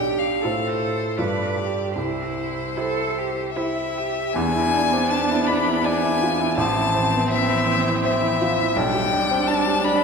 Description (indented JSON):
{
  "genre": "classical, slow romantic movement for piano quartet",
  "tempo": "74-85 BPM",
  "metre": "3/4",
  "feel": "rubato",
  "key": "unclear",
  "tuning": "A4 = 440 Hz",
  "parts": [
    { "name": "rich violin", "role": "melody", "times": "0.0-10.0 s", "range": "C5 to B5", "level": "-24 LUFS", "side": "left 6 dB", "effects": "none" },
    { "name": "warm cello", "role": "second line", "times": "0.0-10.0 s", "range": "E3 to B4", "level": "-28 LUFS", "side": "right 4 dB", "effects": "none" },
    { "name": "rich viola", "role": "accompaniment", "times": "0.0-10.0 s", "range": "C4 to G4", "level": "-28 LUFS", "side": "right 3 dB", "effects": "none" },
    { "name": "warm baby grand piano", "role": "accompaniment", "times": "0.0-10.0 s", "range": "A1 to D5", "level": "-23 LUFS", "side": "right 1 dB", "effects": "none" }
  ],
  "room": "wet concert hall reverb, RT60 2.3 s",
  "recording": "minimal, uncompressed stereo recording",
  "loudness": "-19 LUFS",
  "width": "side -5 dB against mid",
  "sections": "0.0-4.3 A section; 4.3-10.0 B section",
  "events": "none",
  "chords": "0.4 F/A; 1.2 G9; 2.0 C; 4.3 E7; 6.6 Am; 8.8 G/B",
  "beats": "0.43 1.18 | 1.96 2.76 3.54 | 4.34 5.11 5.85 | 6.58 7.30 8.03 | 8.75 9.48"
}